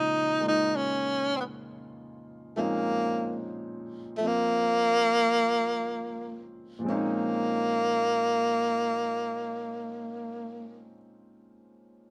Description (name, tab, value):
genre	jazz ballad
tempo	49-68 BPM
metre	4/4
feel	swing 67% on 8ths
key	Bb minor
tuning	A4 = 440 Hz
part	breathy tenor saxophone	melody	0.0-10.9 s	A3 to Eb4	-28 LUFS	equal	none
part	clear concert grand piano	accompaniment	0.0-12.1 s	Bb2 to C5	-37 LUFS	equal	none
room	light reverb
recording	none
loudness	-28 LUFS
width	mono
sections	0.0-6.8 A section; 6.8-11.7 B section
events	slowing down 0.0-6.8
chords	0.0 Bbm11